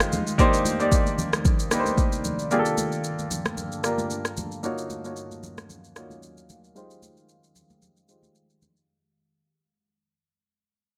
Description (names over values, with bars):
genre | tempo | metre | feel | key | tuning
amapiano | 113 BPM | 4/4 | swing 55% on 16ths | unclear | A4 = 439 Hz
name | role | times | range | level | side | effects
bright grand piano | accompaniment | 0.0-8.9 s | Ab3 to D5 | -28 LUFS | equal | low-pass filter
deep dark ambient pad | sustained chords | 0.0-8.9 s | C2 to A5 | -36 LUFS | equal | chorus, built-in reverb, low-pass filter
afro-pop drum kit | drums | 0.0-8.9 s | kick drum, rim click, shaker | -27 LUFS | equal | none
congas | percussion | 0.1-8.8 s | none | -36 LUFS | equal | none
room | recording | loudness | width
light reverb, studio reverb | bright 1980s-style digital production | -25 LUFS | mono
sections
0.0-8.9 A section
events
fade-out 0.0-8.9; filter sweep 0.0-8.9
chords
0.4 Cm9; 2.5 Gm9; 4.6 Ebm9; 6.8 Fm9